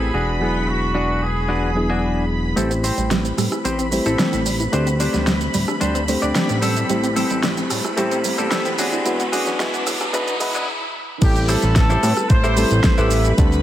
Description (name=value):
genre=nu-disco, nu disco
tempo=111 BPM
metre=4/4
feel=straight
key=A dorian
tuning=A4 = 440 Hz
part: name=clear trumpet section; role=melody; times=0.0-2.0, 11.2-13.1 s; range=B3 to C5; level=-24 LUFS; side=equal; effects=vintage 12-bit sampler grit, tape echo
part: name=barky reed electric piano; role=accompaniment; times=0.0-13.6 s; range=F#3 to C5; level=-24 LUFS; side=left 1 dB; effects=overdrive
part: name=string machine, full ensemble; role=sustained chords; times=0.0-13.6 s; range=B4 to B5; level=-30 LUFS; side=equal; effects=ensemble chorus, sidechain pumping
part: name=semi-hollow electric guitar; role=riff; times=0.0-13.3 s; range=C4 to D5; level=-25 LUFS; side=left 1 dB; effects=lush chorus, low-pass filter
part: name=fat analog bass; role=bass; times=0.0-13.6 s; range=D1 to A2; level=-22 LUFS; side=equal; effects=none
part: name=analog pluck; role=arpeggios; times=2.6-10.6 s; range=F#3 to E4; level=-27 LUFS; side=right 3 dB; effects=chorus, sidechain pumping, tape echo
part: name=pop drum kit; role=drums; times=2.6-13.6 s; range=crash cymbal, hi-hat, rim click, shaker, snare drum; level=-24 LUFS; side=right 1 dB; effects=overdrive
part: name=riser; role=sound effects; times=4.6-10.7 s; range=none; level=-29 LUFS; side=equal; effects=none
part: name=electronic kick drum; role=drums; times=11.2-13.5 s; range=none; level=-16 LUFS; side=equal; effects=overdrive
room=light reverb, digital ambience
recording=high-pass filter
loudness=-17 LUFS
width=side -12 dB against mid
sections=0.0-2.6 A section; 2.6-11.2 B section; 11.2-13.6 C section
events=filter sweep on reed electric piano 0.0-2.6; build-up 2.6-11.2; filter sweep on synth arpeggio sound 2.6-11.2; filter sweep 2.6-11.2; riser 4.6-10.7; stop 10.7-11.2; drop 11.2-13.6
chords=0.1 E9; 2.6 Am7; 4.7 D7sus4; 6.6 Am7; 8.8 E9; 11.2 Am7